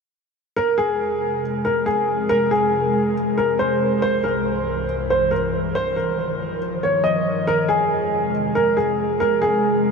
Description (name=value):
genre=hip hop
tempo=139 BPM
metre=4/4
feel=half-time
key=F minor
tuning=A4 = 441 Hz
part: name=warm upright piano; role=melody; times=0.6-9.9 s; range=Ab4 to Eb5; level=-19 LUFS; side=equal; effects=lush chorus, analog delay
part: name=ethereal airy pad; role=sustained chords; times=1.0-9.9 s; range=C2 to Ab3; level=-24 LUFS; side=equal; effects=ensemble chorus, built-in reverb
room=wet huge ambient reverb, RT60 7.0 s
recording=dreamy mix soaked in reverb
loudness=-18 LUFS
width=side -5 dB against mid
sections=0.6-9.9 A section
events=none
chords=0.6 Fm; 4.0 C; 5.7 Ebadd9; 7.5 Fm